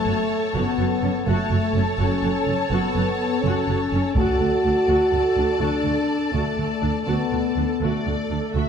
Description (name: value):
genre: cinematic, epic orchestral film score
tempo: 83 BPM (dotted quarters)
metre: 12/8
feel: straight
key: F# minor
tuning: A4 = 441 Hz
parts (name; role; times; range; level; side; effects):
- rich symphonic violin section; second line; 0.0-8.7 s; C#5 to A5; -29 LUFS; left 4 dB; none
- dark studio viola section; accompaniment; 0.0-8.7 s; C#4 to A4; -28 LUFS; right 3 dB; none
- dark French horn section; sustained chords; 0.0-8.7 s; A3 to F#4; -23 LUFS; left 3 dB; none
- rich symphonic cello section; bass; 0.1-8.6 s; D2 to F#2; -28 LUFS; right 3 dB; none
- rich symphonic double bass section; bass; 0.1-8.6 s; F#1 to D2; -27 LUFS; right 4 dB; none
- taiko ensemble; drums; 4.2-5.1 s; none; -25 LUFS; equal; none
room: moderate scoring stage reverb, RT60 1.6 s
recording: dark, warm production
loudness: -19 LUFS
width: side -7 dB against mid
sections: 0.0-8.7 A section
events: none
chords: 0.0 F#m; 4.2 D